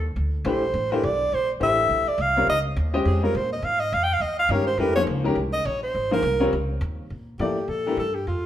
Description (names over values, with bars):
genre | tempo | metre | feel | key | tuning
modal jazz | 207 BPM | 4/4 | swing 60% on 8ths | unclear | A4 = 440 Hz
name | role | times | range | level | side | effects
breathy alto saxophone | melody | 0.0-8.5 s | F4 to G5 | -23 LUFS | right 1 dB | none
upright bass | bass | 0.0-8.5 s | Ab1 to Bb2 | -28 LUFS | equal | none
warm upright piano | accompaniment | 0.5-8.0 s | Eb3 to Eb5 | -25 LUFS | left 2 dB | none
room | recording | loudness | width
wet large studio reverb, RT60 1.4 s | band playing live in one room | -21 LUFS | side -11 dB against mid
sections
0.0-7.1 A section; 7.1-8.5 B section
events
alto saxophone solo 0.0-7.1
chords
0.0 Bbmaj9; 2.5 Dbmaj9; 7.1 Bbmaj7